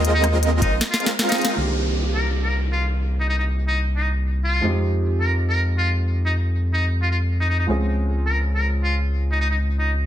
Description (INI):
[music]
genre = future bass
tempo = 157 BPM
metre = 4/4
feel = half-time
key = C phrygian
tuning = A4 = 440 Hz
[part]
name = airy dreamy lead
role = arpeggios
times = 0.0-1.6 s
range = Eb5 to F5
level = -29 LUFS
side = right 1 dB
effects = chorus, sidechain pumping, dub echo
[part]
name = supersaw chords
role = riff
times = 0.0-1.6 s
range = Ab3 to F5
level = -24 LUFS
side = right 1 dB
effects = sidechain pumping, dub echo
[part]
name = saturated sub bass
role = bass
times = 0.0-10.1 s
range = Bb1 to F2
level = -21 LUFS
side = equal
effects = tube saturation, sidechain pumping
[part]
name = trap drum kit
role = drums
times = 0.0-1.5 s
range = hi-hat, rim click, snare drum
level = -22 LUFS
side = left 1 dB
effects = none
[part]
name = trumpet with metal mute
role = melody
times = 0.1-9.9 s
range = Eb4 to Bb4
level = -26 LUFS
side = left 1 dB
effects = sidechain pumping, digital delay
[part]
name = electronic kick drum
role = drums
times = 0.6-0.7 s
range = none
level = -21 LUFS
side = equal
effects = none
[part]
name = felt-muted upright piano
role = accompaniment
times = 1.6-10.1 s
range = Eb3 to Ab4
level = -30 LUFS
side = right 2 dB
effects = sidechain pumping, dub echo
[part]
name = downlifter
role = sound effects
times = 1.6-4.6 s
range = none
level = -31 LUFS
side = right 1 dB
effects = none
[sound]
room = light reverb, digital ambience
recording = none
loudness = -19 LUFS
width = side -11 dB against mid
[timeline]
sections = 0.0-1.6 A section; 1.6-10.1 B section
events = drop 0.0-1.6; drum fill 0.8-1.6; band accent 1.4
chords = 0.0 Bb9sus4; 1.6 Cm9; 4.6 Fm9; 7.7 Dbmaj7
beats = | 0.04 0.43 0.81 1.19 | 1.57 1.96 2.34 2.72 | 3.10 3.48 3.87 4.25 | 4.63 5.01 5.40 5.78 | 6.16 6.54 6.92 7.31 | 7.69 8.07 8.45 8.84 | 9.22 9.60 9.98